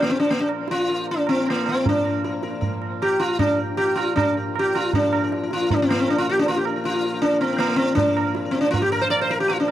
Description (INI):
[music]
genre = indian classical, Hindustani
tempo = 156 BPM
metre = 4/4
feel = straight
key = Bb raga bhupali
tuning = A4 = 436 Hz
[part]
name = sitar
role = melody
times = 0.0-9.7 s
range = Bb3 to D5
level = -20 LUFS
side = left 1 dB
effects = tape echo
[part]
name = pedal harmonium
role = drone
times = 0.0-9.7 s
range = Bb2 to F3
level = -31 LUFS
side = left 4 dB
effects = none
[part]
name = tabla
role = percussion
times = 0.1-9.7 s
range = none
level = -26 LUFS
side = right 5 dB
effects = none
[sound]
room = small room reverb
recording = dry, close 1970s-style studio recording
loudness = -19 LUFS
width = side -12 dB against mid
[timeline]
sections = 0.0-4.9 A section; 4.9-9.7 B section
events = speeding up 0.0-9.7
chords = none